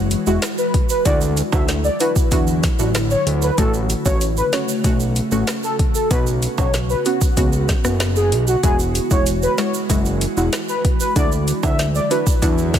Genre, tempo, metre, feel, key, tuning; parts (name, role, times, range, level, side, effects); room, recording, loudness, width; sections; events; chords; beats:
dancehall; 95 BPM; 4/4; straight; E mixolydian; A4 = 439 Hz
ethereal airy pad; sustained chords; 0.0-12.8 s; C#3 to F#4; -26 LUFS; right 1 dB; ensemble chorus, built-in reverb, sidechain pumping
fat analog bass; bass; 0.0-12.8 s; E1 to E2; -20 LUFS; equal
afro-pop drum kit; drums; 0.1-12.8 s; hi-hat, kick drum, rim click, snare drum; -20 LUFS; equal; soft clipping on snare
egg shaker and timbales; percussion; 0.1-12.8 s; -30 LUFS; right 10 dB
deep mellow chord stab; accompaniment; 0.3-12.6 s; G#3 to F#4; -24 LUFS; left 1 dB; chorus, sidechain pumping
warm velvety synth lead; melody; 0.6-12.2 s; F#4 to E5; -22 LUFS; equal; chorus, tape echo
light reverb; dense, heavily limited modern master; -16 LUFS; side -9 dB against mid
0.0-12.8 A section
0.0 Eadd9; 1.1 Dadd9; 3.6 A6; 6.1 Bsus2; 8.6 Eadd9; 11.2 Dadd9
0.42 | 1.06 1.69 2.32 2.95 | 3.58 4.21 4.84 5.48 | 6.11 6.74 7.37 8.00 | 8.63 9.27 9.90 10.53 | 11.16 11.79 12.42